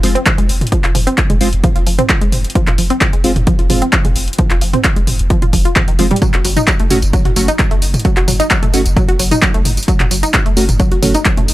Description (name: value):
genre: driving peak-time techno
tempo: 131 BPM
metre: 4/4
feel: straight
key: unclear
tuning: A4 = 441 Hz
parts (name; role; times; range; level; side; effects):
- wide unison pluck; riff; 0.0-11.4 s; Eb3 to Gb4; -19 LUFS; equal; sidechain pumping, tape echo
- wavetable chord stab; stabs; 0.0-11.1 s; Ab3 to Gb4; -19 LUFS; right 1 dB; sidechain pumping, tape echo
- saturated sub bass; bass; 0.0-11.5 s; F1 to Gb1; -18 LUFS; equal; overdrive, sidechain pumping, low-pass filter
- punchy analog drum machine; drums; 0.0-11.5 s; handclaps, hi-hat, tambourine, toms; -17 LUFS; equal; overdrive, sidechain pumping on hats, sidechain pumping on toms, sidechain pumping on cymbals, sidechain pumping on perc
- electronic kick drum; drums; 0.3-11.4 s; none; -14 LUFS; equal; overdrive
room: little or no reverb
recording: dry, gritty hardware recording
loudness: -11 LUFS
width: side -16 dB against mid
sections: 0.0-11.5 A section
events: none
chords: 0.0 Fm; 6.2 Gbm